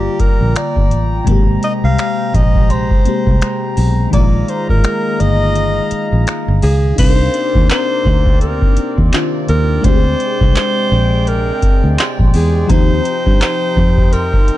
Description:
contemporary R&B; 84 BPM; 4/4; swing 58% on 16ths; C minor; A4 = 436 Hz
warm alto saxophone; melody; 0.0-14.6 s; G4 to F5; -20 LUFS; equal; digital delay
FM electric piano with soft pad layer; accompaniment; 0.0-14.6 s; C3 to Bb4; -20 LUFS; left 3 dB; chorus
warm brass ensemble; sustained chords; 0.0-14.6 s; C3 to Bb5; -24 LUFS; right 1 dB
fingered electric bass; bass; 0.0-14.5 s; G1 to G2; -15 LUFS; equal
booming analog drum machine; drums; 0.2-14.6 s; crash cymbal, finger snaps, handclaps, hi-hat, kick drum; -14 LUFS; equal
synth chime; texture; 2.7-14.6 s; F5 to C6; -31 LUFS; right 2 dB; ensemble chorus, digital delay
digital ambience; dark, warm production; -11 LUFS; side -14 dB against mid
0.0-7.0 A section; 7.0-14.6 B section
kick muted 5.6-7.0
0.0 Gm7; 1.3 Abmaj9; 4.1 Bb7sus4; 7.0 Cm9; 9.8 Bb13; 12.7 Eb69

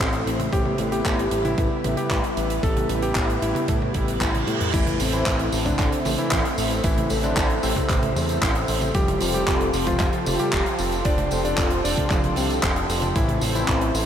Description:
italo disco; 114 BPM; 4/4; straight; A minor; A4 = 440 Hz
warm electric grand piano; melody; 0.0-13.9 s; C3 to D5; -28 LUFS; left 1 dB; tape echo
lush unison pad; sustained chords; 0.0-14.1 s; F3 to C5; -28 LUFS; right 1 dB; chorus
mellow synth brass; stabs; 0.0-14.1 s; B3 to C5; -30 LUFS; left 2 dB; chorus, diffuse ambient delay
fat analog bass; bass; 0.0-14.1 s; F1 to A2; -27 LUFS; equal
big rock drum kit; drums; 0.0-14.1 s; crash cymbal, handclaps, hi-hat, tambourine, toms; -26 LUFS; right 1 dB
electronic kick drum; drums; 0.0-13.8 s; -25 LUFS; equal; overdrive
reverse cymbal; sound effects; 4.0-4.7 s; -36 LUFS; right 5 dB
moderate huge ambient reverb, RT60 8.4 s; dreamy mix soaked in reverb; -20 LUFS; side -9 dB against mid
0.0-4.7 A section; 4.7-14.1 B section
reverse cymbal 4.0-4.7; drum fill 4.3-4.7
0.0 Am; 0.5 Em/A; 4.7 Am; 8.9 Fadd9; 13.2 Am

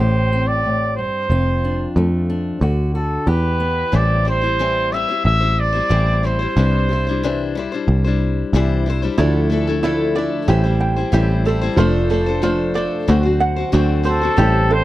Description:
folk; 92 BPM; 4/4; straight; A minor; A4 = 440 Hz
warm trumpet; melody; 0.0-7.6, 14.1-14.8 s; A4 to E5; -20 LUFS; right 1 dB
fingerpicked steel-string acoustic guitar; accompaniment; 0.0-3.9 s; E2 to G4; -23 LUFS; left 2 dB
picked electric bass; bass; 0.0-14.8 s; F1 to F2; -18 LUFS; equal
picked steel-string acoustic guitar; accompaniment; 3.9-14.8 s; A2 to C5; -22 LUFS; left 6 dB
warm upright piano; accompaniment; 9.2-14.8 s; F1 to E5; -23 LUFS; right 2 dB
ukulele; arpeggios; 9.2-14.8 s; E4 to G5; -22 LUFS; right 4 dB
little or no reverb; dry, close 1970s-style studio recording; -15 LUFS; side -15 dB against mid
0.0-3.9 A section; 3.9-14.4 B section
0.0 Am7; 1.3 F6; 2.6 D; 3.3 Em; 3.9 Am7; 6.6 Cadd9; 9.2 Dmadd9; 10.5 Am7; 11.8 F6; 13.1 D7

